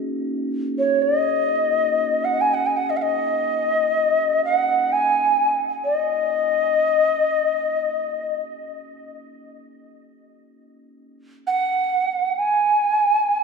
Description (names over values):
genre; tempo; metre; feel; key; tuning
world meditative, free-time meditation music; free time; none; none; Eb minor pentatonic; A4 = 440 Hz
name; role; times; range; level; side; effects
bronze singing bowl; texture; 0.0-6.5 s; Bb3 to Ab4; -32 LUFS; right 1 dB; none
mellow hollow Native American-style cedar flute; melody; 0.8-13.4 s; Db5 to Ab5; -18 LUFS; equal; diffuse ambient delay
room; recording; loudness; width
wet recital hall reverb, RT60 1.4 s, studio reverb; dark, warm production; -18 LUFS; side -4 dB against mid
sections
0.0-13.4 A section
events
none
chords
none